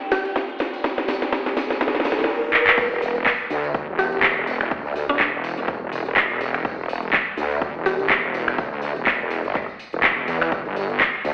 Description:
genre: bass house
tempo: 124 BPM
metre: 4/4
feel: swing 56% on 16ths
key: E minor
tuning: A4 = 440 Hz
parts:
  - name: riser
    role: sound effects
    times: 0.0-2.8 s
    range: none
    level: -27 LUFS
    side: equal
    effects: none
  - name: warbly tape-like pad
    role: texture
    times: 0.0-2.3 s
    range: E4 to G5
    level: -34 LUFS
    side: equal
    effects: none
  - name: mallet-like synth pluck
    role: melody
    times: 0.1-0.2, 4.0-8.0 s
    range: D4 to G4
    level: -25 LUFS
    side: equal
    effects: chorus, digital delay
  - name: house drum kit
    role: drums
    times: 0.1-11.3 s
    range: crash cymbal, finger snaps, handclaps, hi-hat, snare drum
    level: -20 LUFS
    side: equal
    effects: overdrive
  - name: tambourine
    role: percussion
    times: 0.1-11.3 s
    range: none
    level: -45 LUFS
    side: equal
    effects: none
  - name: electronic kick drum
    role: drums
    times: 0.4-11.1 s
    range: none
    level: -25 LUFS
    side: equal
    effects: overdrive, high-pass filter on kick
  - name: wobble bass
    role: bass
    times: 2.8-11.3 s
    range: E1 to E2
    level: -24 LUFS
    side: equal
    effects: chorus, overdrive, sidechain pumping
room: wet lush hall reverb, RT60 1.7 s, digital ambience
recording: played on a big sound system in a bare room, large studio reverb, telephone sound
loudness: -19 LUFS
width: side -30 dB against mid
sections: 0.0-2.8 A section; 2.8-11.3 B section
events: build-up 0.0-2.8; drum fill 0.0-2.3, 2.5; riser 0.0-2.8; drop 2.8-11.3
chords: 0.0 Em; 2.8 N.C.; 10.5 G5

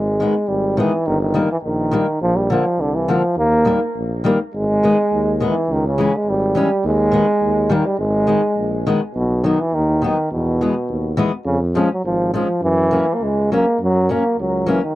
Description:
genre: alpine folk, alpine dance band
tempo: 104 BPM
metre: 2/4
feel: straight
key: G# harmonic minor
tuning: A4 = 440 Hz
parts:
  - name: clear euphonium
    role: melody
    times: 0.0-15.0 s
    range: B2 to A#3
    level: -18 LUFS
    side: right 1 dB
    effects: tape echo
  - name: warm tuba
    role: bass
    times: 0.0-14.8 s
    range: G1 to F#2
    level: -22 LUFS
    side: equal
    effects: none
  - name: fingerpicked steel-string acoustic guitar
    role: accompaniment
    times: 0.2-14.8 s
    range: D3 to C#4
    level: -18 LUFS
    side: left 2 dB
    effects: none
room: light reverb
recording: dry, close 1970s-style studio recording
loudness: -15 LUFS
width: side -15 dB against mid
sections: 0.0-9.1 A section; 9.1-15.0 B section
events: none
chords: 0.0 G#m; 1.1 D#/G; 2.2 A#; 3.4 D#; 4.5 G#m; 5.7 C#m; 6.8 G#m/D#; 7.4 D#; 8.0 G#m; 9.1 B; 10.3 E; 11.5 C#/E#; 12.6 F#

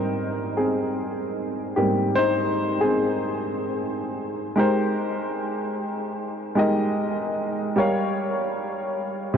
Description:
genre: hip hop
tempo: 75 BPM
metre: 4/4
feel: swing 62% on 16ths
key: Ab major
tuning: A4 = 441 Hz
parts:
  - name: warm upright piano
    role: solo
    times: 0.0-9.4 s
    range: Ab2 to F5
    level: -22 LUFS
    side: equal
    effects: cassette tape, analog delay
room: wet huge ambient reverb, RT60 7.3 s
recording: dreamy mix soaked in reverb, cassette tape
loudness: -22 LUFS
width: side -7 dB against mid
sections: 0.0-4.6 A section; 4.6-9.4 B section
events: upright piano solo 0.0-4.6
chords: 0.0 Abmaj7; 7.8 Gm7b5

